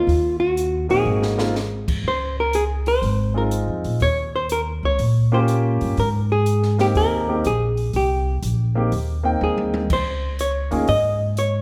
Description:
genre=jazz, small-group swing and bop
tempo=122 BPM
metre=4/4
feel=swing 67% on 8ths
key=Ab major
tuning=A4 = 439 Hz
part: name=hollow-body jazz guitar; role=melody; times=0.0-11.6 s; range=F4 to Eb5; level=-24 LUFS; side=equal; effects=none
part: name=warm concert grand piano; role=accompaniment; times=0.0-10.9 s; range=Ab3 to G5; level=-26 LUFS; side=equal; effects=none
part: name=upright bass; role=bass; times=0.0-11.6 s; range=Ab1 to Bb2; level=-24 LUFS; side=equal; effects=none
part: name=open jazz drum kit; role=drums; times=0.1-11.5 s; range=crash cymbal, hi-hat, kick drum, snare drum, toms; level=-32 LUFS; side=equal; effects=none
room=moderate recital hall reverb, RT60 1.3 s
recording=recorded in a church or concert hall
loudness=-21 LUFS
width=mono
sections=0.0-9.9 A section; 9.9-11.6 B section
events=drum fill 1.1-1.6, 9.4-9.9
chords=0.1 Ebm; 1.1 Ab7; 2.0 Dbmaj7; 4.0 Eb7; 6.0 Abmaj7; 9.9 Dbsus2

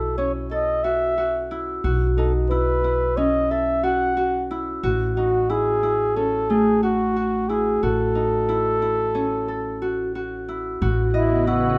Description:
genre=contemporary instrumental, chamber music in an uneven meter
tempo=180 BPM (eighths)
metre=9/8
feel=straight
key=unclear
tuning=A4 = 440 Hz
part: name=mellow flugelhorn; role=melody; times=0.0-11.8 s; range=E4 to F#5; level=-24 LUFS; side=equal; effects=none
part: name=Celtic harp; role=arpeggios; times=0.0-11.8 s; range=A3 to D#5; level=-27 LUFS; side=equal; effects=none
part: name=upright bass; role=bass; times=0.0-11.8 s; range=A1 to B1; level=-29 LUFS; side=equal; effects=none
part: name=soft additive organ-like pad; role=sustained chords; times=11.1-11.8 s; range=C#3 to F#4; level=-28 LUFS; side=equal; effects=ensemble chorus, built-in reverb
room=light reverb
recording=close, detailed microphones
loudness=-22 LUFS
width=mono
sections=0.0-10.8 A section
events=none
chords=0.0 B7sus4; 4.8 F#m7/A; 10.8 A69

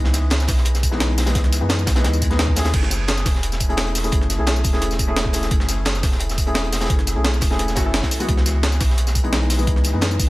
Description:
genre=liquid drum and bass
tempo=173 BPM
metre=4/4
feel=straight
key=F# dorian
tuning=A4 = 438 Hz
part: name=felt-muted upright piano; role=accompaniment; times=0.0-10.3 s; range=E3 to A4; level=-25 LUFS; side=left 2 dB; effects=vintage 12-bit sampler grit, dub echo
part: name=warm sub bass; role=bass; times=0.0-10.3 s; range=E1 to F#2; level=-21 LUFS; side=equal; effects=none
part: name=crunchy breakbeat drum kit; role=drums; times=0.0-10.3 s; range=hi-hat, snare drum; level=-30 LUFS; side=equal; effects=high-pass filter on hats, high-pass filter on snare, high-pass filter on room
part: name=breakbeat sampler-style drum kit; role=drums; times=0.1-10.3 s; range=crash cymbal, hi-hat, snare drum, tambourine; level=-24 LUFS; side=equal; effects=none
part: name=electronic kick drum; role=drums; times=0.5-10.3 s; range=none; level=-21 LUFS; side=equal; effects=none
room=small room ambience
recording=none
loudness=-17 LUFS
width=side -19 dB against mid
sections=0.0-10.3 A section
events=none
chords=0.0 C#m7; 2.7 F#m7; 8.3 C#m7

